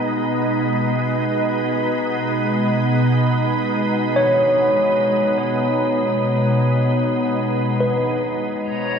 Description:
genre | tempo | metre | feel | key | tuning
ambient | free time | none | none | unclear | A4 = 440 Hz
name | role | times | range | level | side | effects
soft additive organ-like pad | sustained chords | 0.0-9.0 s | B2 to D#5 | -18 LUFS | equal | ensemble chorus, built-in reverb
tine electric piano | arpeggios | 0.0-9.0 s | B4 to C#5 | -20 LUFS | equal | overdrive, tape echo
drifting glass-harmonics texture | texture | 8.7-9.0 s | C#5 to A#5 | -24 LUFS | left 4 dB | chorus, built-in reverb
room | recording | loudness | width
wet spring reverb, RT60 2.5 s | echo-heavy mix, cassette tape | -17 LUFS | side -6 dB against mid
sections
0.0-8.6 A section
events
none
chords
0.0 G#m/B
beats
free time

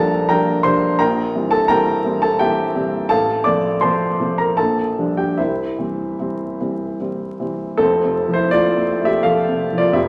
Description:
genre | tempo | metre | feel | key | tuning
classical, romantic character piece for solo piano | 72-86 BPM | 3/4 | rubato | F major | A4 = 439 Hz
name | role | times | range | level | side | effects
warm grand piano | solo | 0.0-10.1 s | F1 to D6 | -18 LUFS | equal | none
room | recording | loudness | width
wet recital hall reverb, RT60 1.5 s | vinyl crackle, faint mains hum | -19 LUFS | mono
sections
0.0-7.8 A section; 7.8-10.1 B section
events
none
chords
0.0 Gm7/Bb; 1.0 C7/Bb; 3.1 F/A; 4.6 Gm7/Bb; 5.4 C; 7.8 F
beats
0.29 | 0.99 1.69 2.39 | 3.10 3.83 4.58 | 5.39 6.20 7.00 | 7.80 8.52 9.24 | 9.95

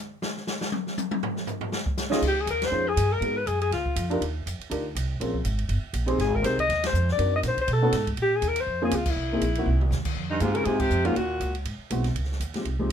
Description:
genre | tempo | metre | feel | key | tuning
jazz, small-group swing and bop | 242 BPM | 4/4 | swing 57% on 8ths | F minor | A4 = 440 Hz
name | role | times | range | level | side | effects
open jazz drum kit | drums | 0.2-12.8 s | crash cymbal, hi-hat, kick drum, ride cymbal, snare drum, toms | -32 LUFS | equal | none
dark baby grand piano | accompaniment | 2.1-12.9 s | F3 to Eb5 | -28 LUFS | equal | none
upright bass | bass | 2.2-12.9 s | G1 to B2 | -27 LUFS | right 1 dB | none
warm alto saxophone | melody | 2.3-4.1, 6.2-11.6 s | Eb4 to Eb5 | -26 LUFS | left 3 dB | none
warm baritone saxophone | second line | 10.3-11.6 s | G2 to Db3 | -30 LUFS | right 6 dB | none
room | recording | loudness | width
light reverb | minimal, uncompressed stereo recording | -23 LUFS | side -8 dB against mid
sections
0.0-2.2 A section; 2.2-10.2 B section; 10.2-12.9 C section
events
drum solo 0.0-2.2; band accent 2.6, 6.8, 9.0, 10.8; drum fill 9.7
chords
0.0 N.C.; 1.7 Ab5; 2.2 Dbmaj9; 3.2 Abm7; 3.7 Dbadd9; 4.2 Ebmaj9; 5.2 Bbm7; 5.7 Eb6; 6.2 Abmaj7; 7.2 Cm7b5; 7.7 B9; 8.2 Bbm9; 9.2 C7#9; 10.2 Fm9; 11.2 Ebm7; 11.7 Ab7alt; 12.2 Dbmaj9#11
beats
| 0.23 0.48 0.73 0.97 | 1.22 1.47 1.72 1.97 | 2.21 2.46 2.71 2.96 | 3.21 3.46 3.70 3.95 | 4.20 4.45 4.70 4.95 | 5.20 5.44 5.69 5.94 | 6.19 6.44 6.68 6.93 | 7.18 7.43 7.68 7.92 | 8.17 8.42 8.67 8.92 | 9.17 9.41 9.66 9.91 | 10.16 10.41 10.66 10.91 | 11.16 11.41 11.65 11.90 | 12.15 12.40 12.65 12.90

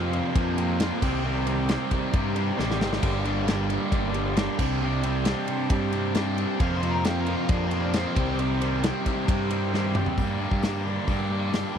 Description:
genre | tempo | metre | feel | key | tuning
classic rock | 134 BPM | 4/4 | straight | unclear | A4 = 440 Hz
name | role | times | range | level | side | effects
crunchy overdriven guitar | riff | 0.0-11.8 s | F2 to G4 | -30 LUFS | right 14 dB | phaser
overdriven electric guitar | riff | 0.0-11.8 s | F2 to G4 | -31 LUFS | left 14 dB | none
overdriven electric guitar | riff | 0.0-10.2 s | F2 to C4 | -31 LUFS | equal | none
fuzz fingered electric bass | bass | 0.0-11.8 s | G1 to G2 | -28 LUFS | equal | overdrive
big rock drum kit | drums | 0.1-11.6 s | crash cymbal, hi-hat, kick drum, ride cymbal, snare drum, toms | -28 LUFS | left 1 dB | none
octave-fuzz lead guitar | second line | 6.6-8.4 s | C4 to F5 | -33 LUFS | left 3 dB | distortion
room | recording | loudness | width
little or no reverb | dry, close 1970s-style studio recording | -23 LUFS | side -8 dB against mid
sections
0.0-10.2 A section; 10.2-11.8 B section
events
drum fill 2.6-3.0, 9.7-10.2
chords
0.0 Fsus4; 1.0 Cm; 3.0 Gm; 4.6 Csus2; 6.6 Fsus4; 8.2 Cm; 10.2 Gm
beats
0.36 0.81 | 1.25 1.70 2.14 2.59 | 3.03 3.48 3.92 4.37 | 4.82 5.26 5.71 6.16 | 6.60 7.05 7.50 7.95 | 8.39 8.84 9.29 9.74 | 10.19 10.63 11.08 11.53

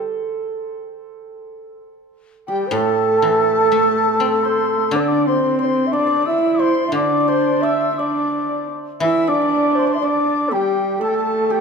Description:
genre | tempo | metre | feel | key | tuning
chinese traditional, Chinese chamber ensemble | 61 BPM | 4/4 | rubato | D shang mode | A4 = 440 Hz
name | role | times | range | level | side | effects
bright reedy large dizi | second line | 0.0-11.6 s | G5 to E6 | -24 LUFS | left 5 dB | none
hammered dulcimer | second line | 0.0-11.6 s | G4 to E5 | -25 LUFS | right 5 dB | none
guzheng | accompaniment | 0.0-11.6 s | A2 to C4 | -25 LUFS | left 1 dB | none
mellow xiao | melody | 2.5-11.6 s | G4 to E5 | -20 LUFS | left 1 dB | none
warm horsehead fiddle | second line | 2.5-11.6 s | G3 to E4 | -21 LUFS | right 4 dB | none
room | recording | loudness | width
moderate recital hall reverb, RT60 1.3 s | minimal, uncompressed stereo recording | -16 LUFS | side -5 dB against mid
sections
0.0-9.0 A section; 9.0-11.6 B section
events
none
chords
none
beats
0.04 | 1.01 1.99 2.98 3.96 | 4.94 5.93 6.94 7.99 | 9.03 10.03 11.02

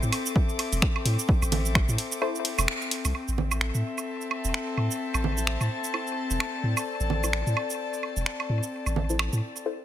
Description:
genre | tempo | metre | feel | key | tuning
minimal techno | 129 BPM | 4/4 | swing 58% on 16ths | A minor | A4 = 440 Hz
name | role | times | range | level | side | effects
punchy sub bass | bass | 0.0-9.4 s | E1 to A2 | -27 LUFS | equal | sidechain pumping
punchy analog drum machine | drums | 0.0-9.6 s | finger snaps, hi-hat, ride cymbal, shaker | -30 LUFS | right 2 dB | overdrive
rich chamber string section | texture | 0.0-9.7 s | C4 to D6 | -32 LUFS | left 4 dB | sidechain pumping
woodblock and congas | percussion | 0.1-9.3 s | none | -32 LUFS | right 7 dB | ping-pong delay
electronic kick drum | drums | 0.4-1.9 s | none | -24 LUFS | equal | overdrive
filtered dub chord stab | stabs | 2.2-9.7 s | E4 to C5 | -33 LUFS | left 4 dB | chorus, ping-pong delay
room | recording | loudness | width
light reverb | none | -25 LUFS | side -11 dB against mid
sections
0.0-3.1 A section; 3.1-9.8 B section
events
drop 0.0-3.1; break 2.2-3.1; band accent 2.7; filter sweep on synth stab 3.1-9.8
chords
0.0 Am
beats
0.36 0.82 | 1.29 1.75 2.22 2.68 | 3.15 3.61 4.08 4.54 | 5.01 5.47 5.94 6.40 | 6.87 7.33 7.80 8.26 | 8.73 9.19 9.66

